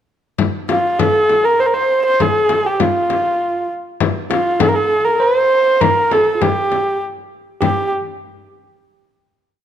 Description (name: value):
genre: Persian modal ensemble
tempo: 99 BPM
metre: 3/4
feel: straight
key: unclear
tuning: A4 = 443 Hz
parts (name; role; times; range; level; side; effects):
- frame drum; percussion; 0.4-7.9 s; none; -19 LUFS; left 6 dB; none
- dark kamancheh; melody; 0.7-7.9 s; F4 to C5; -15 LUFS; right 1 dB; none
- bright tine electric piano; second line; 0.7-7.9 s; F4 to C5; -21 LUFS; right 3 dB; none
room: light reverb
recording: none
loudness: -13 LUFS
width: side -10 dB against mid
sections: 0.4-7.6 A section; 7.6-9.4 final note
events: none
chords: none